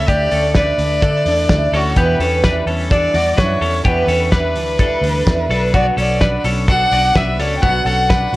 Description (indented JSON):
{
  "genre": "jangly indie pop",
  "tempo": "127 BPM",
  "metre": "4/4",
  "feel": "straight",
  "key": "unclear",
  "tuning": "A4 = 441 Hz",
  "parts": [
    { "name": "rich violin", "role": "melody", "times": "0.0-8.3 s", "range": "F#4 to G5", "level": "-18 LUFS", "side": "equal", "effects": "none" },
    { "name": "picked steel-string acoustic guitar", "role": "accompaniment", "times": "0.0-8.4 s", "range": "E2 to F#4", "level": "-24 LUFS", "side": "right 4 dB", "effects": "none" },
    { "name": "twelve-string electric guitar", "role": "arpeggios", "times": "0.0-8.4 s", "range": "B3 to D5", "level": "-21 LUFS", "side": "left 2 dB", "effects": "spring reverb" },
    { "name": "vintage muted fingered electric bass", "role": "bass", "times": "0.0-8.4 s", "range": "B1 to D3", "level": "-20 LUFS", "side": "equal", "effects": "none" },
    { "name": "cloth-damped thuddy drum kit", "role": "drums", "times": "0.1-8.4 s", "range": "hi-hat, kick drum, snare drum", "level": "-18 LUFS", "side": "equal", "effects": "none" }
  ],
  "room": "moderate studio reverb, RT60 0.8 s",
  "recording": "worn, warbling old tape, cassette tape, warbly pitch drift",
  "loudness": "-13 LUFS",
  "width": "side -18 dB against mid",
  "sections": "0.0-8.4 A section",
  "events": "none",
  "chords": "0.0 Dsus2; 2.0 Em7; 5.5 Bm"
}